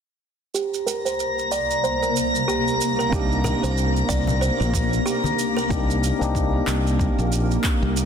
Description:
sunset chillout; 93 BPM; 4/4; swing 58% on 16ths; A4 = 441 Hz
shimmering ambient pad; sustained chords; 1.3-8.1 s; C2 to Bb3; -27 LUFS; left 2 dB; chorus, built-in reverb
buzzing kalimba; arpeggios; 0.5-5.6 s; G4 to D5; -26 LUFS; right 4 dB; low-pass filter, digital delay
drifting glass-harmonics texture; texture; 0.9-5.7 s; Bb5 to Bb6; -27 LUFS; left 2 dB; chorus, built-in reverb
electronic shaker and handclaps; drums; 0.6-8.1 s; -31 LUFS; right 5 dB
tine electric piano; accompaniment; 3.1-8.1 s; Bb3 to G4; -27 LUFS; moving between left 7 dB and right 6 dB; auto-pan, low-pass filter, digital delay
modern bright fingered electric bass; bass; 3.1-8.1 s; Bb1 to C2; -23 LUFS; equal
electronic kick drum; drums; 3.1-7.8 s; -25 LUFS; equal
congas; percussion; 3.4-5.4 s; -30 LUFS; left 3 dB
moderate lush hall reverb, RT60 2.2 s; dense, heavily limited modern master; -20 LUFS; side -7 dB against mid
0.5-5.7 A section; 5.7-8.1 B section
filter sweep on ambient pad 0.5-5.7; filter sweep on kalimba 0.5-5.7; filter sweep on tine electric piano 5.7-8.1
0.5 Cm9
| 0.54 1.19 1.83 2.48 | 3.12 3.77 4.42 5.06 | 5.71 6.35 7.00 7.64

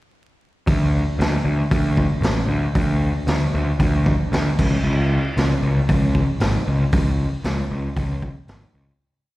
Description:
garage rock duo or trio; 115 BPM; 4/4; straight; A4 = 437 Hz
fuzz picked electric bass; bass; 0.7-8.9 s; G#1 to D2; -19 LUFS; equal; overdrive
raw garage drum kit; drums; 0.7-8.6 s; crash cymbal, hi-hat, kick drum, snare drum; -22 LUFS; equal
little or no reverb; live gig heard through the venue's PA, recital hall reverb, vinyl crackle; -18 LUFS; side -18 dB against mid
0.7-9.0 pre-chorus
fade-out 6.9-9.0
| 0.67 1.19 1.71 2.23 | 2.75 3.27 3.80 4.32 | 4.84 5.36 5.88 6.40 | 6.92 7.43 7.95 8.47

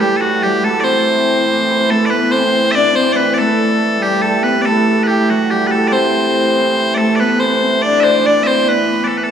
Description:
medieval; 95 BPM (dotted quarters); 6/8; straight; A dorian; A4 = 441 Hz
loud bright bagpipes; melody; 0.0-9.3 s; F#4 to E5; -15 LUFS; equal
hammered dulcimer; second line; 0.0-9.3 s; F#4 to D5; -19 LUFS; right 2 dB
warm viola da gamba; second line; 0.0-9.1 s; F#3 to D4; -17 LUFS; left 2 dB
warm hurdy-gurdy; drone; 0.0-9.3 s; A2 to E3; -20 LUFS; right 2 dB
wet scoring stage reverb, RT60 2.0 s; small room ambience; -12 LUFS; side -8 dB against mid
0.0-9.3 A section
0.22 | 0.85 1.49 | 2.12 2.76 | 3.39 4.02 | 4.66 5.29 | 5.92 6.55 | 7.19 7.82 | 8.45 9.08

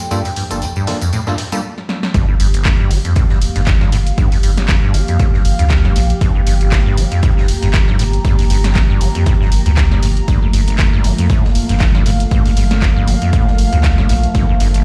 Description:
acid house; 118 BPM; 4/4; swing 56% on 16ths; G minor; A4 = 440 Hz
warm analog pad; sustained chords; 0.0-14.8 s; F3 to A4; -27 LUFS; equal; chorus, sidechain pumping
open jazz drum kit; drums; 0.0-14.7 s; hi-hat, snare drum; -36 LUFS; equal
punchy analog drum machine; drums; 0.0-14.8 s; handclaps, hi-hat, snare drum; -26 LUFS; equal
tambourine; percussion; 0.0-1.6 s; -32 LUFS; equal
warbly tape-like pad; texture; 0.0-14.8 s; G4 to Bb5; -31 LUFS; equal; chorus, built-in reverb, sidechain pumping
acid bass, saw; riff; 0.1-14.8 s; G1 to G3; -21 LUFS; equal; analog chorus, tape echo
percussive organ stab; stabs; 0.1-1.6 s; Bb3 to A4; -27 LUFS; equal; lush chorus, cassette tape, tape echo
saturated sub bass; bass; 2.1-14.8 s; F1 to D2; -18 LUFS; equal; tube saturation, sidechain pumping
electronic kick drum; drums; 2.1-14.5 s; -17 LUFS; equal
little or no reverb; played on a big sound system in a bare room, stone room reverb; -14 LUFS; mono
0.0-2.1 A section; 2.1-14.8 B section
stop 1.6-2.1; drum fill 1.8-2.1; drop 2.1-14.8
0.0 Gm7
| 0.11 0.62 1.13 1.64 | 2.14 2.65 3.16 3.67 | 4.18 4.69 5.20 5.70 | 6.21 6.72 7.23 7.74 | 8.25 8.75 9.26 9.77 | 10.28 10.79 11.30 11.80 | 12.31 12.82 13.33 13.84 | 14.35

